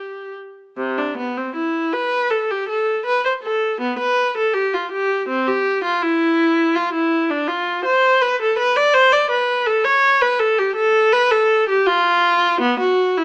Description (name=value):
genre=classical, baroque-style suite movement for unaccompanied viola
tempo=81 BPM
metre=4/4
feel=rubato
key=unclear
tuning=A4 = 439 Hz
part: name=rich viola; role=solo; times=0.0-13.2 s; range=C3 to D5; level=-15 LUFS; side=equal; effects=none
room=light reverb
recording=small speaker sound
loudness=-15 LUFS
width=side -27 dB against mid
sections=0.8-13.2 A section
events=none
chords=none